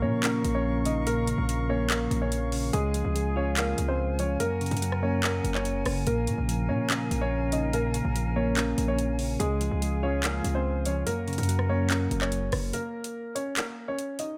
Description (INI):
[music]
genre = hip hop, drill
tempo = 144 BPM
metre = 4/4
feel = half-time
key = Bb minor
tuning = A4 = 440 Hz
[part]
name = dark grand piano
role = melody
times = 0.0-14.4 s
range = Ab3 to Eb5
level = -34 LUFS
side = equal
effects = low-pass filter, tape echo
[part]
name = soft electric-piano-like synth keys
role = accompaniment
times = 0.0-12.8 s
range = Gb2 to F5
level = -32 LUFS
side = equal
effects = chorus, tremolo, low-pass filter
[part]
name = bright small flute group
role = sustained chords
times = 0.0-12.7 s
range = Ab4 to Db6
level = -41 LUFS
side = equal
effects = none
[part]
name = hard-hitting 808-style bass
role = bass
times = 0.0-12.7 s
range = Gb1 to Bb2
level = -32 LUFS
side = equal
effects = none
[part]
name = drill drum kit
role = drums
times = 0.2-14.3 s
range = handclaps, hi-hat, rim click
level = -34 LUFS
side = equal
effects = none
[sound]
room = light reverb, studio ambience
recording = none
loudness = -28 LUFS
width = mono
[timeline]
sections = 0.0-12.7 A section; 12.7-14.4 B section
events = break 12.7-14.4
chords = 0.0 Bbm; 2.7 Db; 4.4 Gb; 6.1 Bbm; 9.4 Db; 11.1 Gb; 12.7 Bbm